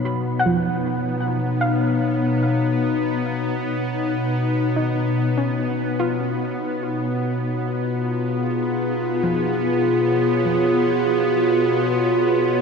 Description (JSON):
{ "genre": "ambient", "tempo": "74 BPM", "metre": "3/4", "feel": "straight", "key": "B lydian", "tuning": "A4 = 439 Hz", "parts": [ { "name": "warbly tape-like pad", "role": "sustained chords", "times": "0.0-12.6 s", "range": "B2 to C#5", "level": "-20 LUFS", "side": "left 1 dB", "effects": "chorus, built-in reverb" }, { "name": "soft round pluck", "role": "arpeggios", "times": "0.0-12.6 s", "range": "E#3 to B5", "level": "-28 LUFS", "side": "right 1 dB", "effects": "wide subtle chorus, analog delay" }, { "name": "bowed-like drone", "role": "drone", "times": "0.0-12.6 s", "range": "B3", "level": "-27 LUFS", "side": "left 1 dB", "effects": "built-in reverb" } ], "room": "wet cathedral reverb, RT60 5.9 s", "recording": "dreamy mix soaked in reverb, cassette tape", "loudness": "-19 LUFS", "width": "side -5 dB against mid", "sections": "0.0-12.6 A section", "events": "fade-out on synth pluck 0.0-12.6", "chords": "0.0 B; 7.4 C#/B" }